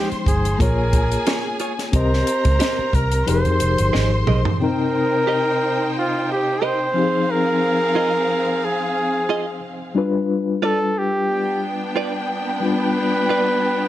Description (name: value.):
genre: lush 1970s-style soul.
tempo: 90 BPM.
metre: 4/4.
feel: swing 54% on 16ths.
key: F minor.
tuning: A4 = 440 Hz.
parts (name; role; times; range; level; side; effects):
warm flugelhorn; melody; 0.0-13.9 s; F4 to C5; -22 LUFS; equal; none.
warm studio string section; second line; 0.0-13.9 s; B3 to C6; -26 LUFS; right 1 dB; none.
reed electric piano; accompaniment; 0.0-13.9 s; C3 to G5; -24 LUFS; left 4 dB; fast tremolo.
direct-recorded clean electric guitar; riff; 0.0-13.5 s; F4 to Eb5; -26 LUFS; right 6 dB; wide subtle chorus.
vintage muted fingered electric bass; bass; 0.1-4.4 s; F1 to F2; -20 LUFS; equal; none.
compact cocktail drum kit; drums; 0.1-4.6 s; hi-hat, kick drum, snare drum, toms; -22 LUFS; equal; none.
room: light reverb, small room ambience.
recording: none.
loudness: -17 LUFS.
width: side -13 dB against mid.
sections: 0.0-4.6 A section; 4.6-13.9 B section.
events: drum fill 3.9-4.6.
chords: 0.0 Fm9; 0.6 Bbm7; 1.9 Cm7; 3.3 Fm11; 4.6 Cm7; 7.0 Fm7; 10.0 G7.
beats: 0.60 1.27 | 1.94 2.61 3.28 3.95 | 4.61 5.28 5.95 6.62 | 7.29 7.95 8.62 9.29 | 9.96 10.62 11.29 11.96 | 12.63 13.29.